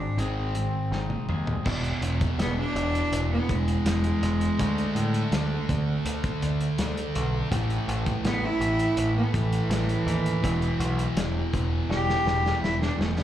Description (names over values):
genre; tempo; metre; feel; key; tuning
quiet-loud alternative rock; 82 BPM; 4/4; straight; E mixolydian; A4 = 442 Hz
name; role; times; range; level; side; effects
rich cello; melody; 0.0-13.2 s; E3 to G4; -28 LUFS; equal; plate reverb
twangy electric guitar; arpeggios; 0.0-1.7 s; G#2 to G#4; -39 LUFS; left 2 dB; phaser, plate reverb, slapback echo
thick fuzz guitar; riff; 0.0-13.2 s; E2 to D4; -30 LUFS; right 1 dB; distortion, slapback echo
growling picked electric bass; bass; 0.0-13.2 s; E1 to A2; -28 LUFS; equal; overdrive
loose indie drum kit; drums; 0.2-13.2 s; crash cymbal, hi-hat, kick drum, snare drum, toms; -31 LUFS; equal; none
room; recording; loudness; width
light reverb; live gig heard through the venue's PA, club reverb; -23 LUFS; side -11 dB against mid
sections
0.0-1.7 A section; 1.7-13.2 B section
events
drum fill 0.9-1.7, 11.9-13.2; cello solo 1.7-13.2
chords
0.0 G#; 1.7 E; 4.6 D5; 7.5 A5; 10.4 E5